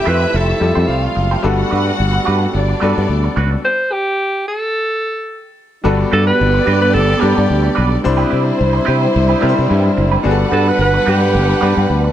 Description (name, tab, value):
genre	disco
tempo	109 BPM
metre	4/4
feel	swing 56% on 16ths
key	G major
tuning	A4 = 440 Hz
part	breathy alto saxophone	melody	0.0-12.1 s	G4 to C5	-17 LUFS	right 1 dB	none
part	dark studio string section	second line	0.0-12.1 s	G3 to F#5	-19 LUFS	right 1 dB	none
part	bright baby grand piano	accompaniment	0.0-12.1 s	G3 to C5	-21 LUFS	left 5 dB	none
part	mellow French horn section	sustained chords	0.0-12.1 s	C3 to G4	-24 LUFS	right 1 dB	none
part	semi-hollow electric guitar	accompaniment	0.1-12.1 s	G3 to C5	-23 LUFS	right 8 dB	wah
part	fingered electric bass	bass	0.1-12.1 s	F1 to C3	-16 LUFS	equal	none
room	light reverb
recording	none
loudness	-12 LUFS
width	side -11 dB against mid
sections	0.0-5.8 A section; 5.8-12.1 B section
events	stop 3.6-5.8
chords	0.0 Fmaj9; 1.4 Gmaj9; 3.6 N.C.; 5.8 Gmaj7; 8.0 Cmaj7; 10.2 Gmaj7